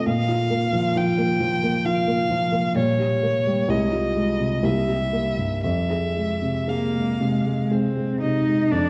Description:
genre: classical, slow romantic movement for piano trio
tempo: 57-68 BPM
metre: 3/4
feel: rubato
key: F minor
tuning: A4 = 440 Hz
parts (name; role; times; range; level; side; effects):
- clear violin; melody; 0.0-8.9 s; Db5 to G5; -28 LUFS; equal; none
- dark baby grand piano; accompaniment; 0.0-8.9 s; C2 to Ab4; -25 LUFS; equal; none
- rich cello; second line; 1.0-8.9 s; F3 to Eb4; -28 LUFS; equal; none
room: wet concert hall reverb, RT60 1.9 s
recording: worn, warbling old tape, cassette tape, warbly pitch drift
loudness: -22 LUFS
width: mono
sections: 0.0-8.7 A section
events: none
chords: 0.1 Bb5; 2.8 Gdim/Bb; 3.7 Fm/C; 4.6 C7; 5.6 Fm

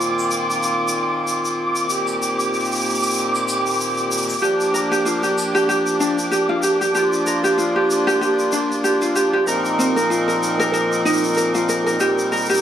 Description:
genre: folktronica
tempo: 95 BPM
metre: 4/4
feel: swing 56% on 16ths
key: Bb major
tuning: A4 = 437 Hz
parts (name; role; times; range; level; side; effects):
- accordion; sustained chords; 0.0-12.6 s; Bb2 to Bb4; -21 LUFS; equal; light tremolo tuning, vintage 12-bit sampler grit
- shaker; drums; 0.0-12.6 s; none; -27 LUFS; equal; none
- flickering grainy texture; texture; 0.0-12.6 s; D6; -26 LUFS; right 1 dB; built-in reverb
- ukulele; arpeggios; 4.4-12.6 s; C4 to Bb4; -19 LUFS; equal; tape echo
room: wet recital hall reverb, RT60 1.5 s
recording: dark, warm production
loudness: -17 LUFS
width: side -10 dB against mid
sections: 0.0-12.6 A section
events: none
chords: 0.0 F7sus4/Bb; 1.9 Eb6/Bb; 4.4 Bb6; 9.5 F7sus4/Bb; 12.0 Eb6/Bb

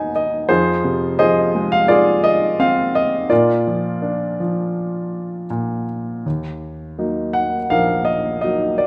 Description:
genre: classical, lyrical solo piano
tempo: 83 BPM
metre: 4/4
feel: rubato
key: Eb harmonic minor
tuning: A4 = 440 Hz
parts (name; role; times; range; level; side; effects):
- warm grand piano; solo; 0.0-8.9 s; Bb1 to Ab5; -19 LUFS; equal; none
room: moderate recital hall reverb, RT60 1.7 s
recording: none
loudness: -19 LUFS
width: mono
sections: 0.0-6.3 A section; 6.3-8.9 B section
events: grand piano fill 0.0-0.5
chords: 0.5 Fm; 3.3 Bb; 6.3 Ebm

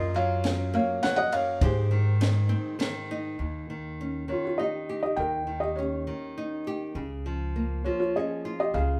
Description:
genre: acoustic folk-pop ballad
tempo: 101 BPM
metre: 3/4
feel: straight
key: unclear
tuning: A4 = 438 Hz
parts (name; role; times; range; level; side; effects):
- felt-muted upright piano; melody; 0.0-9.0 s; F4 to G5; -30 LUFS; equal; none
- nylon-string guitar; accompaniment; 0.0-9.0 s; Eb2 to G4; -36 LUFS; equal; none
- upright bass; bass; 0.0-9.0 s; Db2 to Ab2; -30 LUFS; equal; none
- compact cocktail drum kit; drums; 0.4-2.9 s; kick drum, ride cymbal, snare drum; -33 LUFS; equal; none
room: light reverb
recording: band playing live in one room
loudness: -28 LUFS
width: mono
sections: 0.0-3.4 A section; 3.4-9.0 B section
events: none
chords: 0.0 Gbmaj7; 1.6 Abmaj7; 3.4 Eb7; 7.0 Db6

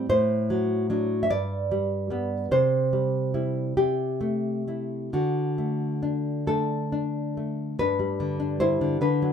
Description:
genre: romantic piece for solo classical guitar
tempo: 43-50 BPM (dotted quarters)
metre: 6/8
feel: rubato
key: G major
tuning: A4 = 440 Hz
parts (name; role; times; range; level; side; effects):
- nylon-string guitar; solo; 0.0-9.3 s; G2 to E5; -23 LUFS; equal; none
room: light reverb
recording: minimal, uncompressed stereo recording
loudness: -24 LUFS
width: side -7 dB against mid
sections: 0.0-7.8 A section; 7.8-9.3 B section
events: none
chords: 0.1 D7/A; 1.3 G; 2.5 C; 3.8 Am/C; 5.1 D; 7.8 G

